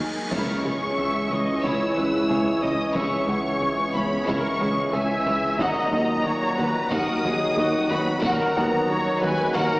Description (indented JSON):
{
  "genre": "cinematic, hybrid orchestral and electronic film score",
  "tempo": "91 BPM",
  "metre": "4/4",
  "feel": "straight",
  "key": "unclear",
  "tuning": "A4 = 440 Hz",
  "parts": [
    { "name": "warm studio violin section", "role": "melody", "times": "0.0-9.8 s", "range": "Ab5 to Fb6", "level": "-29 LUFS", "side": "left 1 dB", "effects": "none" },
    { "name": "warm symphonic viola section", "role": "accompaniment", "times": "0.0-9.8 s", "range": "Cb4 to Fb5", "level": "-28 LUFS", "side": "equal", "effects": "none" },
    { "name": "mellow French horn section", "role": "sustained chords", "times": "0.0-9.8 s", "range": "Bb2 to Bb4", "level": "-29 LUFS", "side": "equal", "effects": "none" },
    { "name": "warm analog pad", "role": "sustained chords", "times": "0.0-9.8 s", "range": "Eb3 to Gb5", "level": "-31 LUFS", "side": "equal", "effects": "chorus" },
    { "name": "tight sequenced synth", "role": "arpeggios", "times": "0.0-9.8 s", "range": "Db3 to Eb4", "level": "-36 LUFS", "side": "equal", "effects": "none" },
    { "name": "plucky analog bass", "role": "riff", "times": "0.0-9.8 s", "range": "Db2 to Eb3", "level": "-36 LUFS", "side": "equal", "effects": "none" },
    { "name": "warm symphonic cello section", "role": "bass", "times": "0.0-9.6 s", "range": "Db2 to Eb2", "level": "-34 LUFS", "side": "equal", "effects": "none" },
    { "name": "cymbal swell and impact", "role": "sound effects", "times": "0.0-3.0 s", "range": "none", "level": "-35 LUFS", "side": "equal", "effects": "none" },
    { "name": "bright grand piano", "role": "texture", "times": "0.0-9.8 s", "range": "Db4 to Gb5", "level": "-36 LUFS", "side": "equal", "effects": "none" },
    { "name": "warm symphonic violin section", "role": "second line", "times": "0.3-9.8 s", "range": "Db4 to Gb5", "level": "-31 LUFS", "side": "equal", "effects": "none" },
    { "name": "clear trombone section", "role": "sustained chords", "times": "0.3-9.8 s", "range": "Eb3 to Ab3", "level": "-31 LUFS", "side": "equal", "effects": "none" },
    { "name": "dark tuba", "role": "bass", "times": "0.3-9.7 s", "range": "Db2 to Eb2", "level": "-33 LUFS", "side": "equal", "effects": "none" },
    { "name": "warm symphonic double bass section", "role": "bass", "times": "0.3-9.6 s", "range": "Db2 to Eb2", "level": "-37 LUFS", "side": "equal", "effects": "none" },
    { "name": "wide detuned saw bass", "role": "bass", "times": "0.3-9.8 s", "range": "Eb1 to Db2", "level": "-34 LUFS", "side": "equal", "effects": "none" },
    { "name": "taiko ensemble", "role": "drums", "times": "0.3-9.8 s", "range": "none", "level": "-35 LUFS", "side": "equal", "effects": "none" }
  ],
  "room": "wet scoring stage reverb, RT60 1.6 s",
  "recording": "heard from further back in the room, small speaker sound",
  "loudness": "-21 LUFS",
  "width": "side -21 dB against mid",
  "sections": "0.3-9.8 A section",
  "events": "cymbal swell 0.0-0.3; impact 0.3-3.0",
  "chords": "0.3 Dbm; 5.6 Ebm"
}